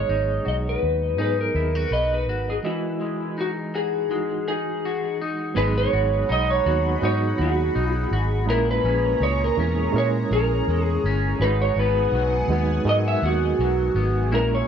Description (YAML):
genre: indie pop, bedroom pop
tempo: 82 BPM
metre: 4/4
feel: swing 55% on 16ths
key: G# minor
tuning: A4 = 440 Hz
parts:
  - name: electric slide guitar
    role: melody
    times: 0.0-14.7 s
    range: E4 to E5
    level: -24 LUFS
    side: equal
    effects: lush chorus, analog delay
  - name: electric guitar at the edge of break-up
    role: accompaniment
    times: 0.0-14.7 s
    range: G#2 to B4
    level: -29 LUFS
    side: left 2 dB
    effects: analog chorus, warbly pitch drift
  - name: reed electric piano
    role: accompaniment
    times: 0.0-14.7 s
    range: E3 to A#5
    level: -30 LUFS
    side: right 6 dB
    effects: fast tremolo, plate reverb
  - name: vintage muted fingered electric bass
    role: bass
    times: 0.0-14.6 s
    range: G1 to A#2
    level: -24 LUFS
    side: equal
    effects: none
  - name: phased analog pad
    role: sustained chords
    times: 5.8-14.7 s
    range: G#4 to C#6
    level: -32 LUFS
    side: left 1 dB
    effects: phaser, chorus, plate reverb
room: light reverb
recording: none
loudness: -20 LUFS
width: side -8 dB against mid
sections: 0.0-5.6 A section; 5.6-14.7 B section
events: break 2.6-5.6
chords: 0.0 G#m7; 2.6 Emaj9; 5.6 G#m7; 8.5 A#m7b5; 11.4 G#m7